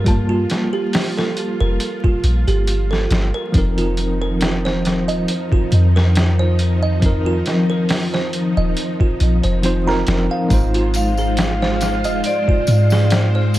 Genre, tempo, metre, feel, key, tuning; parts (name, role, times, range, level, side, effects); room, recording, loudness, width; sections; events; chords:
trip hop; 69 BPM; 4/4; swing 54% on 16ths; A4 = 442 Hz
bell-like tine electric piano; accompaniment; 0.0-13.6 s; F3 to A5; -23 LUFS; left 1 dB; tremolo, tape echo
string machine, cellos; sustained chords; 0.0-13.6 s; F3 to C5; -25 LUFS; left 1 dB; ensemble chorus, vintage 12-bit sampler grit
music box; arpeggios; 0.0-13.6 s; F4 to Bb5; -25 LUFS; right 4 dB; vintage 12-bit sampler grit, tape echo
soft 808-style bass; bass; 0.0-13.6 s; Eb1 to Ab2; -17 LUFS; equal; tube saturation
trip hop sampler-style drum kit; drums; 0.1-13.6 s; hi-hat, kick drum, snare drum; -20 LUFS; equal
tambourine and triangle; percussion; 10.5-13.6 s; -34 LUFS; left 4 dB
backwards swelling texture; texture; 11.2-13.6 s; F5; -31 LUFS; equal; built-in reverb
vibraphone with medium mallets; melody; 11.0-13.6 s; C5 to F5; -22 LUFS; left 1 dB; tape echo
little or no reverb; echo-heavy mix, vinyl crackle; -15 LUFS; side -15 dB against mid
0.0-13.6 A section
0.0 Gm9; 3.5 F7sus4; 10.5 Ab6